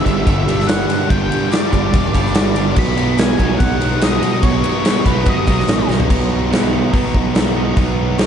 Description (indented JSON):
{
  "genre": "classic rock",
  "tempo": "144 BPM",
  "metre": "4/4",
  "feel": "straight",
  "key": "unclear",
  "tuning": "A4 = 440 Hz",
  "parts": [
    { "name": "octave-fuzz lead guitar", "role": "melody", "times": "0.0-5.9 s", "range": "B4 to B5", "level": "-23 LUFS", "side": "left 2 dB", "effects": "distortion" },
    { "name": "overdriven electric guitar", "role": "riff", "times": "0.0-8.3 s", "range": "G2 to B3", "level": "-21 LUFS", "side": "right 9 dB", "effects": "slapback echo" },
    { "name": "thick fuzz guitar", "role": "riff", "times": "0.0-6.1 s", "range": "G2 to D4", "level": "-27 LUFS", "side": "left 1 dB", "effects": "none" },
    { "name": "tight distorted guitar", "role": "riff", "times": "0.0-8.3 s", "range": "G2 to D#4", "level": "-25 LUFS", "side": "left 10 dB", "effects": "distortion, slapback echo" },
    { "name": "fuzz fingered electric bass", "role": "bass", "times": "0.1-8.3 s", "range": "E1 to B2", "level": "-20 LUFS", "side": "equal", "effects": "overdrive" },
    { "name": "huge arena drum kit", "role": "drums", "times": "0.1-8.3 s", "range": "crash cymbal, hi-hat, kick drum, ride cymbal, snare drum, toms", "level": "-16 LUFS", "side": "equal", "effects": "none" },
    { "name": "tambourine", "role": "percussion", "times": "0.1-6.0 s", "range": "none", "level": "-42 LUFS", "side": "right 4 dB", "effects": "none" }
  ],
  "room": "light reverb, small room ambience",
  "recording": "nothing above 10.6 kHz",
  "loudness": "-13 LUFS",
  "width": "side -8 dB against mid",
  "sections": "0.0-6.1 A section; 6.1-8.3 B section",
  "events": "drum fill 5.9",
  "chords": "0.0 G; 2.8 B"
}